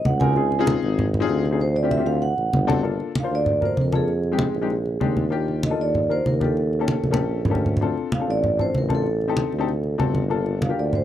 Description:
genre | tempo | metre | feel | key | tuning
Afro-Cuban jazz | 193 BPM | 4/4 | straight | G minor | A4 = 441 Hz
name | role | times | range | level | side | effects
vibraphone with soft mallets | melody | 0.0-11.0 s | Ab4 to Ab5 | -25 LUFS | right 3 dB | none
warm tuba | bass | 0.0-11.0 s | G1 to F2 | -24 LUFS | right 1 dB | none
congas | percussion | 0.1-11.0 s | none | -24 LUFS | equal | none
warm baby grand piano | accompaniment | 0.2-11.0 s | Ab3 to C5 | -26 LUFS | left 8 dB | none
room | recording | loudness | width
small room ambience | dry, close 1970s-style studio recording | -20 LUFS | side -11 dB against mid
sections
0.0-2.8 A section; 2.8-11.0 B section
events
vibraphone solo 0.0-2.8; drum fill 7.0-7.8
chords
0.4 Dbmaj9; 1.6 Dm11; 2.2 D7; 2.8 Gm7 (rootless); 4.1 Fm7; 4.7 Bb13; 5.3 Ebmaj7; 6.6 Eb7#11; 7.8 Dm7; 9.1 Am7b5; 9.7 D7; 10.3 Gm7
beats
0.06 | 0.36 0.68 0.98 1.29 | 1.60 1.91 2.22 2.53 | 2.84 3.15 3.47 3.78 | 4.09 4.40 4.71 5.02 | 5.33 5.64 5.95 6.26 | 6.58 6.89 7.20 7.51 | 7.82 8.13 8.44 8.75 | 9.06 9.37 9.68 9.99 | 10.30 10.61 10.93

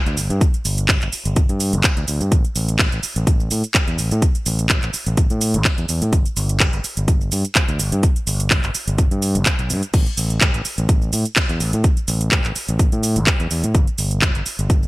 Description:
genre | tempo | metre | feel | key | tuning
filtered disco house | 126 BPM | 4/4 | swing 54% on 16ths | unclear | A4 = 439 Hz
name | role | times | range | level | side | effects
overdriven fingered electric bass | bass | 0.1-14.9 s | G1 to A2 | -20 LUFS | equal | tube saturation, sidechain pumping
house drum kit | drums | 0.1-14.9 s | crash cymbal, handclaps, hi-hat, shaker | -21 LUFS | right 1 dB | sidechain pumping on hats, sidechain pumping on perc, sidechain pumping on cymbals
electronic kick drum | drums | 0.4-14.8 s | none | -17 LUFS | equal | none
room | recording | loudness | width
little or no reverb | bright 1980s-style digital production | -16 LUFS | side -20 dB against mid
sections
0.0-14.9 A section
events
none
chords
none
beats
| 0.41 0.89 1.36 1.84 | 2.32 2.79 3.27 3.75 | 4.22 4.70 5.17 5.65 | 6.13 6.60 7.08 7.56 | 8.03 8.51 8.98 9.46 | 9.94 10.41 10.89 11.37 | 11.84 12.32 12.79 13.27 | 13.75 14.22 14.70

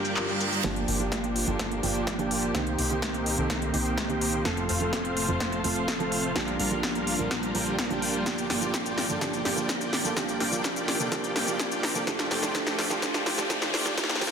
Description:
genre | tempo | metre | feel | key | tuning
EDM, festival progressive house | 126 BPM | 4/4 | straight | G minor | A4 = 439 Hz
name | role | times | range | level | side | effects
dark baby grand piano | accompaniment | 0.0-14.3 s | Eb3 to C5 | -31 LUFS | right 4 dB | sidechain pumping, ping-pong delay
rich studio string section | sustained chords | 0.0-14.3 s | C3 to G4 | -36 LUFS | left 1 dB | sidechain pumping
dense compressed supersaw | riff | 0.0-14.3 s | G3 to Bb5 | -31 LUFS | left 1 dB | cassette tape, sidechain pumping, low-pass filter, ping-pong delay
big-room dance drum kit | drums | 0.0-14.3 s | cabasa, handclaps, hi-hat, snare drum | -29 LUFS | left 1 dB | low-pass filter on hats, low-pass filter on perc, low-pass filter on snare, low-pass filter on room
reverse cymbal and riser | sound effects | 0.0-0.6, 10.9-14.3 s | none | -35 LUFS | equal | none
fat analog bass | bass | 0.6-14.3 s | F1 to F2 | -36 LUFS | left 1 dB | sidechain pumping
electronic kick drum | drums | 0.6-14.1 s | none | -38 LUFS | left 1 dB | none
room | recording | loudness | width
moderate lush hall reverb, RT60 2.5 s | dense, heavily limited modern master, high-pass filter | -25 LUFS | side -6 dB against mid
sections
0.6-14.3 A section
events
reverse cymbal 0.0-0.6; build-up 0.6-14.3; drum fill 0.6-14.3; filter sweep on supersaw synth 0.6-14.3; filter sweep 0.6-14.3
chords
0.0 Bb6; 0.6 Gm7; 2.5 Cm7; 4.5 F; 6.4 Bb6; 8.3 Gm7; 10.2 Cm7; 12.1 F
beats
0.17 | 0.64 1.12 1.59 2.07 | 2.55 3.02 3.50 3.98 | 4.45 4.93 5.40 5.88 | 6.36 6.83 7.31 7.79 | 8.26 8.74 9.21 9.69 | 10.17 10.64 11.12 11.60 | 12.07 12.55 13.02 13.50 | 13.98

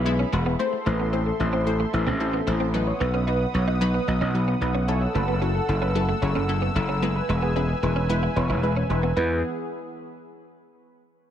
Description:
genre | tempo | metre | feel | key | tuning
pop | 112 BPM | 4/4 | straight | E major | A4 = 440 Hz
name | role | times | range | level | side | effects
warm analog pad | sustained chords | 0.0-9.4 s | E3 to E6 | -31 LUFS | right 1 dB | chorus
gritty slap bass | bass | 0.0-9.4 s | E1 to E2 | -24 LUFS | equal | overdrive
punchy chord stab | accompaniment | 0.1-9.4 s | F#3 to C5 | -29 LUFS | left 2 dB | chorus
direct-recorded clean electric guitar | riff | 0.2-9.3 s | G#3 to E4 | -33 LUFS | right 3 dB | analog chorus
fat analog lead | melody | 0.6-9.4 s | G#4 to E5 | -32 LUFS | equal | chorus, diffuse ambient delay
room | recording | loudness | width
moderate plate reverb, RT60 2.5 s | dreamy mix soaked in reverb | -21 LUFS | side -10 dB against mid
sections
0.6-9.2 A section; 9.2-11.3 B section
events
none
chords
0.0 E; 0.6 Am; 2.7 B; 4.9 F#m7; 7.0 E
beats
0.06 | 0.59 1.13 1.67 2.20 | 2.74 3.27 3.81 4.34 | 4.88 5.42 5.95 6.49 | 7.02 7.56 8.10 8.63 | 9.17

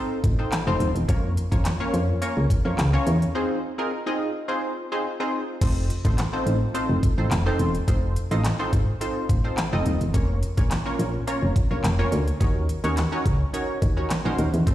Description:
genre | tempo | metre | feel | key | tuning
dance-pop | 106 BPM | 4/4 | straight | unclear | A4 = 440 Hz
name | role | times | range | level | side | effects
funky polysynth comp | accompaniment | 0.0-14.7 s | Bb3 to Eb5 | -27 LUFS | equal | chorus, sidechain pumping
solid FM bass | bass | 0.2-14.7 s | Eb1 to F2 | -23 LUFS | equal | sidechain pumping
pop drum kit | drums | 0.2-14.7 s | crash cymbal, handclaps, hi-hat, kick drum, snare drum | -25 LUFS | equal | none
room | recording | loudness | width
light reverb, digital ambience | played on a big sound system in a bare room, stone room reverb | -21 LUFS | side -13 dB against mid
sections
0.0-5.6 A section; 5.6-14.7 A section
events
break 3.4-5.6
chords
0.0 F7; 1.1 Bbm/F; 3.4 Fm7; 5.6 F7; 10.1 Bbm/F; 12.4 Ebm7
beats
0.52 | 1.09 1.65 2.22 2.79 | 3.35 3.92 4.48 5.05 | 5.62 6.18 6.75 7.31 | 7.88 8.45 9.01 9.58 | 10.14 10.71 11.28 11.84 | 12.41 12.97 13.54 14.11 | 14.67

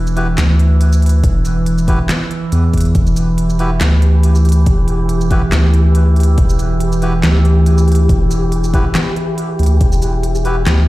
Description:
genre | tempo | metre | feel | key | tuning
deep dubstep | 140 BPM | 4/4 | swing 55% on 16ths, half-time | E minor | A4 = 441 Hz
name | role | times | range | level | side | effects
overtone-sweeping drone | sustained chords | 0.0-10.9 s | E3 | -18 LUFS | right 2 dB | chorus, built-in reverb
soft dub sub bass | bass | 0.0-10.9 s | E1 to E2 | -12 LUFS | equal | none
dubstep drum kit | drums | 0.1-10.8 s | handclaps, hi-hat, shaker, snare drum | -21 LUFS | equal | studio reverb
melodica | stabs | 0.2-10.6 s | E4 to B4 | -27 LUFS | left 1 dB | dub echo
electronic kick drum | drums | 1.2-9.9 s | none | -14 LUFS | equal | studio reverb
wind-like tuned noise texture | texture | 3.4-10.9 s | G4 | -24 LUFS | left 1 dB | built-in reverb
room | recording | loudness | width
little or no reverb | played on a big sound system in a bare room, stone room reverb | -11 LUFS | side -17 dB against mid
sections
0.0-10.9 A section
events
none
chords
0.0 Em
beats
0.38 0.81 | 1.24 1.66 2.09 2.52 | 2.95 3.38 3.81 4.24 | 4.66 5.09 5.52 5.95 | 6.38 6.81 7.24 7.66 | 8.09 8.52 8.95 9.38 | 9.81 10.23 10.66

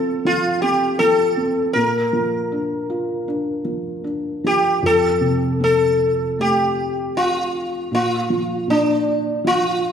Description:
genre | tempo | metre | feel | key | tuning
children's music, lullaby | 79 BPM | 4/4 | rubato | Bb major | A4 = 442 Hz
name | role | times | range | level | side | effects
sitar | melody | 0.0-9.9 s | D4 to Bb4 | -18 LUFS | left 1 dB | none
felt-muted upright piano | accompaniment | 0.0-9.9 s | F2 to F4 | -23 LUFS | right 2 dB | none
room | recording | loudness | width
moderate recital hall reverb, RT60 1.6 s | recorded in a church or concert hall | -17 LUFS | side -8 dB against mid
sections
0.0-4.8 A section; 4.8-9.9 B section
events
none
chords
0.0 F; 1.8 Bb; 4.8 F; 7.9 Bb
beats
0.26 1.00 | 1.75 2.51 3.27 4.05 | 4.83 5.61 6.38 7.15 | 7.92 8.68 9.44

